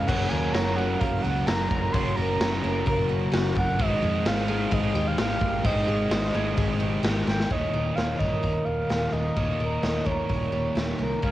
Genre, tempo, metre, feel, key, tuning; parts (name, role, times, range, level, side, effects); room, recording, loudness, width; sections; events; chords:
rock, shoegaze and dream pop; 129 BPM; 4/4; straight; A4 = 440 Hz
reedy FM lead; melody; 0.0-11.3 s; Db5 to C6; -30 LUFS; right 1 dB; chorus, cassette tape, analog delay
picked twelve-string acoustic guitar; arpeggios; 0.0-11.3 s; Gb4 to Db5; -32 LUFS; left 1 dB; wide subtle chorus, cassette tape, analog delay
crunchy overdriven guitar; riff; 0.0-11.3 s; Eb2 to Ab4; -31 LUFS; right 5 dB; reverse reverb, cassette tape
raw garage guitar; riff; 0.0-7.5 s; Gb2 to Db4; -35 LUFS; equal
thick fuzz guitar; riff; 0.0-11.3 s; Eb2 to Db4; -32 LUFS; left 5 dB; distortion, analog chorus, cassette tape
vintage muted fingered electric bass; bass; 0.0-11.3 s; Eb1 to F2; -30 LUFS; equal
raw garage drum kit; drums; 0.1-11.3 s; crash cymbal, hi-hat, kick drum, snare drum; -28 LUFS; equal; cassette tape
light reverb; home recording on cassette; -23 LUFS; side -14 dB against mid
0.0-7.5 A section; 7.5-11.3 B section
drum fill 7.3
0.1 Gb; 3.8 Abmaj7; 7.5 Eb7